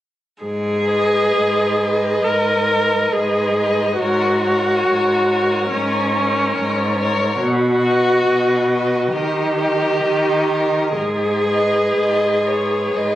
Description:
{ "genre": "classical, slow romantic movement for string quartet", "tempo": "68 BPM", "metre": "4/4", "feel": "uneven beats, rubato", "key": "G# minor", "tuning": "A4 = 440 Hz", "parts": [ { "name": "rich viola", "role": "accompaniment", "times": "0.4-13.2 s", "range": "C#4 to A#4", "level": "-18 LUFS", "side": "equal", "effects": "none" }, { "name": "warm cello", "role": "bass", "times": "0.4-13.2 s", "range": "G#2 to D#3", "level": "-22 LUFS", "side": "right 1 dB", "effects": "none" }, { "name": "rich violin", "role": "melody", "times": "0.9-13.2 s", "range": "C#5 to D#5", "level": "-23 LUFS", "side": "equal", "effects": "none" }, { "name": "rich violin", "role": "second line", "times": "0.9-13.2 s", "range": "A#4 to B4", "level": "-26 LUFS", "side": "left 2 dB", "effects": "none" } ], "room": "light reverb", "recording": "recorded on a phone in the room, club reverb, compression", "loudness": "-15 LUFS", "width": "side -13 dB against mid", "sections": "0.4-13.2 A section", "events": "none", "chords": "0.4 G#m; 4.0 F#/G#; 7.4 B; 9.1 D#; 11.0 G#m" }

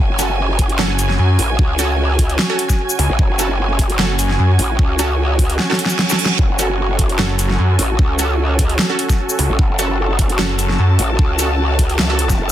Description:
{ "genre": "heavy wobble dubstep", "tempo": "150 BPM", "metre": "4/4", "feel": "swing 53% on 16ths, half-time", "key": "F# minor", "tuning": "A4 = 440 Hz", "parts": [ { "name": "supersaw pad", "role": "sustained chords", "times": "0.0-12.5 s", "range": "C#4 to G#5", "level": "-25 LUFS", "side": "right 1 dB", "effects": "sidechain pumping, low-pass filter" }, { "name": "growl bass", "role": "bass", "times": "0.0-12.5 s", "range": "F#1 to C#2", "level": "-18 LUFS", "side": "equal", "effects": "chorus, overdrive" }, { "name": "dark studio string section", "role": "texture", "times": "0.0-12.5 s", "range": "F#4 to A5", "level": "-25 LUFS", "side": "right 1 dB", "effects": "sidechain pumping" }, { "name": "orchestra-hit-like synth stab", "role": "stabs", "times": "0.2-12.2 s", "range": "C#4 to A4", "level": "-24 LUFS", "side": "right 3 dB", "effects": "built-in reverb, dub echo" }, { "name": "big-room dance drum kit", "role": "drums", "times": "0.2-12.5 s", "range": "hi-hat, shaker, snare drum", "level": "-20 LUFS", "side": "equal", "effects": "overdrive, studio reverb" }, { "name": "electronic kick drum", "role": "drums", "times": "0.6-12.4 s", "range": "none", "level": "-16 LUFS", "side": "equal", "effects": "studio reverb" }, { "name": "snarling distorted saw bass", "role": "bass", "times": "0.8-4.6, 7.2-11.0 s", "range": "F#1 to F#2", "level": "-15 LUFS", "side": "equal", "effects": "distortion, overdrive" }, { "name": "reverse cymbal", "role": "sound effects", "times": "5.8-6.4 s", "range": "none", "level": "-23 LUFS", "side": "right 6 dB", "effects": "none" } ], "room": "digital ambience", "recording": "dense, heavily limited modern master", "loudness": "-14 LUFS", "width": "side -12 dB against mid", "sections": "0.0-12.5 A section", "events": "drum fill 5.6-6.4; reverse cymbal 5.8-6.4", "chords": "0.0 F#m" }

